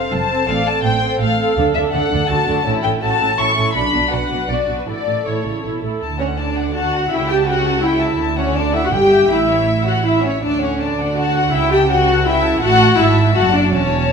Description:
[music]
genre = quick classical-period movement for string orchestra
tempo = 164 BPM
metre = 3/4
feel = rubato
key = D major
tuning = A4 = 440 Hz
[part]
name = warm studio violin section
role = melody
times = 0.0-14.1 s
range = B4 to C#6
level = -21 LUFS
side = left 5 dB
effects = none
[part]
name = warm studio violin section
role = second line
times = 0.0-14.1 s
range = D4 to G5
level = -21 LUFS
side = left 2 dB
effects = none
[part]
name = warm studio viola section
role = accompaniment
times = 0.0-14.1 s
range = C4 to A4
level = -18 LUFS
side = equal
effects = none
[part]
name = dark studio cello section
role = bass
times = 0.0-14.1 s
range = E2 to D3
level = -24 LUFS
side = right 4 dB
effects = none
[part]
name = dark studio double bass section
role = bass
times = 0.0-14.1 s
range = E1 to D2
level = -23 LUFS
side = right 4 dB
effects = none
[sound]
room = wet recital hall reverb, RT60 1.5 s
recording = none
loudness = -14 LUFS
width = side -6 dB against mid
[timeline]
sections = 0.0-6.0 A section; 6.0-14.1 B section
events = none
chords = 0.5 F/A; 1.6 D; 2.7 A; 3.7 Bm; 4.9 A; 6.0 D; 7.1 A7/C#; 8.2 D; 8.9 Em/G; 9.3 A; 10.4 D; 11.5 A7/C#; 12.6 A5; 13.4 F#m

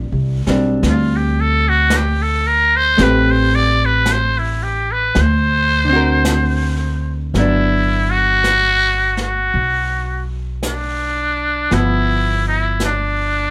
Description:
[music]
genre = jazz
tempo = 55 BPM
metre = 4/4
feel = swing 67% on 8ths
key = G major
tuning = A4 = 442 Hz
[part]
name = hollow-body jazz guitar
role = accompaniment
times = 0.0-13.5 s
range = D3 to B4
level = -22 LUFS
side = equal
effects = none
[part]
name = upright bass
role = bass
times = 0.0-13.5 s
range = G1 to D2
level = -21 LUFS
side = equal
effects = none
[part]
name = jazz brush drum kit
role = drums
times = 0.5-13.5 s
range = brushed snare drum, hi-hat, snare drum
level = -28 LUFS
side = equal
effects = none
[part]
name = trumpet with metal mute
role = melody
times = 0.9-13.5 s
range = D4 to D5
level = -19 LUFS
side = equal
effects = none
[sound]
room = light reverb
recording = none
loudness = -16 LUFS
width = mono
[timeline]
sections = 0.0-7.3 A section; 7.3-13.5 B section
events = muted trumpet solo 0.0-7.3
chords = 0.0 Bb69 (rootless); 3.0 Am9; 5.2 Daug7; 7.3 Gmaj7; 11.7 G7

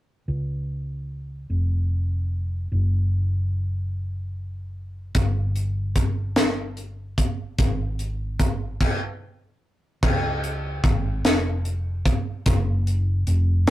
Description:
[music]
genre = slow gospel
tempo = 49 BPM (dotted quarters)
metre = 6/8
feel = straight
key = Db major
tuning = A4 = 440 Hz
[part]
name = hollow-body short-scale fingered electric bass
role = bass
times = 0.3-13.7 s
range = F1 to Db2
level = -24 LUFS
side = equal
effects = none
[part]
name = crisp fusion drum kit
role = drums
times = 5.1-13.7 s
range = crash cymbal, hi-hat, kick drum, snare drum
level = -22 LUFS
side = equal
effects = none
[sound]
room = moderate studio reverb, RT60 0.5 s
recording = rough rehearsal-room recording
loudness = -22 LUFS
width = side -15 dB against mid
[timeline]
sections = 0.3-10.0 A section; 10.0-13.7 B section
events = stop 8.8-10.0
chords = none

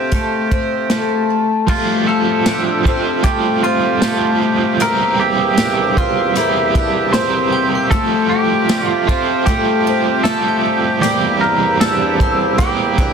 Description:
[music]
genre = dream pop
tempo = 77 BPM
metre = 4/4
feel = straight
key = unclear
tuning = A4 = 440 Hz
[part]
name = clear woodwind section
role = sustained chords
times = 0.0-13.1 s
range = E2 to E5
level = -20 LUFS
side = right 2 dB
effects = none
[part]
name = picked twelve-string acoustic guitar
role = arpeggios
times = 0.0-13.1 s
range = A3 to D4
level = -19 LUFS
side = left 5 dB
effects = wide subtle chorus, ping-pong delay
[part]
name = vintage drum kit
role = drums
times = 0.1-13.1 s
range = crash cymbal, hi-hat, kick drum, snare drum, tambourine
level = -19 LUFS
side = equal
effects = none
[part]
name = clean electric guitar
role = melody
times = 1.7-13.1 s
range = E4 to C5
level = -19 LUFS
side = right 2 dB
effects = ping-pong delay
[part]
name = crunchy overdriven guitar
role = accompaniment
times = 1.7-13.1 s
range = E3 to Bb4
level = -20 LUFS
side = right 7 dB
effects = tremolo, lush chorus
[part]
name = glassy synth bell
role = texture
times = 2.1-12.1 s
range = D5 to C6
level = -30 LUFS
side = left 4 dB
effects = chorus, ping-pong delay
[sound]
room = moderate plate reverb, RT60 2.7 s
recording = dense, heavily limited modern master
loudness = -13 LUFS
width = side -6 dB against mid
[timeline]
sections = 0.0-1.7 A section; 1.7-13.1 B section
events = none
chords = 0.0 Fadd9; 4.8 C7/E; 7.9 Fadd9; 11.0 C7/E

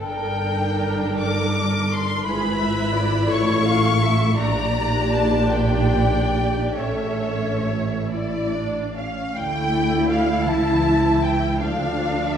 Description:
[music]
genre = classical, slow romantic movement for string orchestra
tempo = 44-58 BPM (dotted quarters)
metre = 6/8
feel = rubato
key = D minor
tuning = A4 = 442 Hz
[part]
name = dark studio violin section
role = melody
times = 0.0-12.4 s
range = A4 to D6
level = -26 LUFS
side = left 3 dB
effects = none
[part]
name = warm studio violin section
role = second line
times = 0.0-12.4 s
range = G#4 to A5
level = -27 LUFS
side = left 1 dB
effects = none
[part]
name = warm studio viola section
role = accompaniment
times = 0.0-12.4 s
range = E3 to B4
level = -24 LUFS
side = left 1 dB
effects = none
[part]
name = dark studio cello section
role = bass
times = 0.0-12.4 s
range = G2 to E4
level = -25 LUFS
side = right 2 dB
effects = none
[part]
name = rich studio double bass section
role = bass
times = 0.0-12.4 s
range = G1 to D2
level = -26 LUFS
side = right 2 dB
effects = none
[sound]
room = wet scoring stage reverb, RT60 1.6 s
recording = heard from further back in the room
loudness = -19 LUFS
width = side -8 dB against mid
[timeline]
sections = 0.0-9.3 A section; 9.3-12.4 B section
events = none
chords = 0.0 Gm; 2.3 E/G#; 3.3 A; 4.4 Gm/Bb; 6.8 A; 9.3 D5; 10.5 A/C#; 11.6 Dm

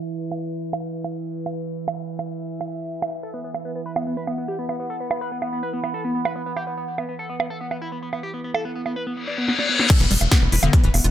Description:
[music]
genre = psychedelic trance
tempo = 144 BPM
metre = 4/4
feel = straight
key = unclear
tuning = A4 = 439 Hz
[part]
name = overtone-sweeping drone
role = sustained chords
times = 0.0-11.1 s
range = E3 to E4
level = -30 LUFS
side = right 2 dB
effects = chorus, built-in reverb, sidechain pumping
[part]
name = big-room dance drum kit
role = drums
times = 0.3-11.1 s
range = bongos, crash cymbal, hi-hat, snare drum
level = -26 LUFS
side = right 3 dB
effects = low-pass filter on hats, low-pass filter on snare, low-pass filter on cymbals, low-pass filter on perc, low-pass filter on room
[part]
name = overdriven synth lead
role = melody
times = 3.2-11.1 s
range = B3 to D5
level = -29 LUFS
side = left 1 dB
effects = phaser, sidechain pumping, digital delay
[part]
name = reverse cymbal and downlifter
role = sound effects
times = 9.2-11.1 s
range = none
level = -24 LUFS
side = left 4 dB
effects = none
[part]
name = liquid acid bass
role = riff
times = 9.9-11.1 s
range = D3 to F4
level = -26 LUFS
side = moving between left 6 dB and right 4 dB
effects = chorus, auto-pan, sidechain pumping
[part]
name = electronic kick drum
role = drums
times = 9.9-10.8 s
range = none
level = -17 LUFS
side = equal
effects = none
[part]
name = tight sequencer bass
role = bass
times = 10.0-11.1 s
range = D1 to E1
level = -20 LUFS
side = equal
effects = none
[sound]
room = light reverb, digital ambience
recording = low-pass filter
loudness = -22 LUFS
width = side -11 dB against mid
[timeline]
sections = 0.0-9.9 A section; 9.9-11.1 B section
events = filter sweep on synth drone 0.0-9.9; filter sweep 0.0-9.9; reverse cymbal 9.2-9.9; drum fill 9.5-9.9; drop 9.9-11.1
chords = 0.0 E5

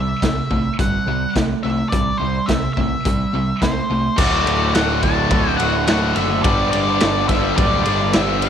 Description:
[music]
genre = classic rock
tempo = 106 BPM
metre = 4/4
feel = straight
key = D mixolydian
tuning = A4 = 440 Hz
[part]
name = octave-fuzz lead guitar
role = melody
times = 0.0-8.5 s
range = C5 to A5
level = -23 LUFS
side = left 2 dB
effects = distortion, slapback echo
[part]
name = raw garage guitar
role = riff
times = 0.0-8.5 s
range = D2 to G4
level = -24 LUFS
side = left 13 dB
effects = overdrive
[part]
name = tight distorted guitar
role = riff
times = 0.0-8.5 s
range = D2 to A3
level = -23 LUFS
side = right 10 dB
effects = distortion
[part]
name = growling picked electric bass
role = bass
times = 0.0-8.5 s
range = D1 to C2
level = -24 LUFS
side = equal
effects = overdrive
[part]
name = raw garage drum kit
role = drums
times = 0.2-8.5 s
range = crash cymbal, hi-hat, kick drum, ride cymbal, snare drum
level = -21 LUFS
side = equal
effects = none
[part]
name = crunchy overdriven guitar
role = riff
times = 4.2-8.5 s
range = D2 to G4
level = -23 LUFS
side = right 1 dB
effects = none
[sound]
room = light reverb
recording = 1960s-style stereo with parts hard left and right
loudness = -16 LUFS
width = side -8 dB against mid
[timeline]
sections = 0.0-4.2 A section; 4.2-8.5 B section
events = none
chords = 0.0 C; 4.2 D; 6.5 G

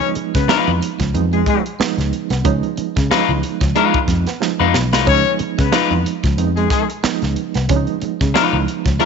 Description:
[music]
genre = funk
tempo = 92 BPM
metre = 4/4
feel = swing 56% on 16ths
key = Db mixolydian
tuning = A4 = 440 Hz
[part]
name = warm horn section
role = second line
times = 0.0-6.9 s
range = Ab3 to Db5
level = -20 LUFS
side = left 14 dB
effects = none
[part]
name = reed electric piano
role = stabs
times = 0.0-9.1 s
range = Fb3 to F4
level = -22 LUFS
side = right 15 dB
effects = overdrive, fast tremolo
[part]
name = crisp fusion drum kit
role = drums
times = 0.0-9.1 s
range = hi-hat, kick drum, snare drum, splash cymbal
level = -21 LUFS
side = right 1 dB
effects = none
[part]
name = electric guitar at the edge of break-up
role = riff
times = 0.2-9.1 s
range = Fb3 to Db4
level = -26 LUFS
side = right 12 dB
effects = none
[part]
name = vintage muted picked electric bass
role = bass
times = 0.2-9.0 s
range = Cb2 to Db3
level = -20 LUFS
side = left 1 dB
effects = none
[part]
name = electric guitar at the edge of break-up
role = accompaniment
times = 0.5-9.1 s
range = Eb4 to Cb5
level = -18 LUFS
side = left 14 dB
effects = warbly pitch drift
[sound]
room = light reverb, small room ambience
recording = 1960s-style stereo with parts hard left and right, nothing above 7.7 kHz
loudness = -15 LUFS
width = side -6 dB against mid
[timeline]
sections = 0.0-9.1 A section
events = drum fill 4.4-5.1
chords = 0.0 Db9

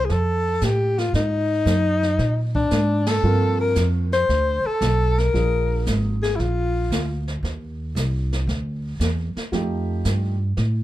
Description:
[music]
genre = jazz, small-group swing and bop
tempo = 115 BPM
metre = 4/4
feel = swing 68% on 8ths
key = Bb major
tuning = A4 = 441 Hz
[part]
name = breathy alto saxophone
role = melody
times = 0.0-7.3 s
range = D4 to C5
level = -22 LUFS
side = left 2 dB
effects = plate reverb
[part]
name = upright bass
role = bass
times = 0.0-10.8 s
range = Ab1 to Bb2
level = -22 LUFS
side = right 1 dB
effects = none
[part]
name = jazz brush drum kit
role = drums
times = 0.1-10.8 s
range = brushed snare drum, hi-hat, kick drum, ride cymbal, snare drum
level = -30 LUFS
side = right 1 dB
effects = none
[part]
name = warm grand piano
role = accompaniment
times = 3.2-6.2, 9.5-10.3 s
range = F3 to Bb4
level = -27 LUFS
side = right 2 dB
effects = none
[sound]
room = light reverb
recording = dark, warm production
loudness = -19 LUFS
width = side -14 dB against mid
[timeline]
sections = 0.0-10.8 A section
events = band accent 3.0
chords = 0.0 Bbmaj7(no3) (rootless); 1.1 Absus2; 3.2 Gm7; 5.3 Bb7; 7.4 Cmadd9; 9.5 F9

